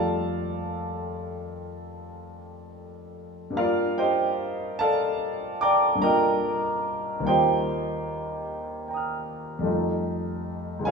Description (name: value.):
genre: classical, impressionist solo piano.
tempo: 49 BPM (dotted quarters).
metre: 9/8.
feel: rubato.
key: unclear.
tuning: A4 = 440 Hz.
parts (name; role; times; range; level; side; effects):
clear concert grand piano; solo; 0.0-10.9 s; Db2 to F6; -24 LUFS; equal; none.
room: wet scoring stage reverb, RT60 1.6 s.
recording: studio reverb.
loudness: -24 LUFS.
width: side -4 dB against mid.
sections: 0.0-10.9 A section.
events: none.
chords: 0.0 Fadd9; 3.6 Gm7; 7.3 Ebadd9; 9.7 F9.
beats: 1.10 2.34 | 3.57 4.80 6.03 | 7.26 8.46 9.67 | 10.86.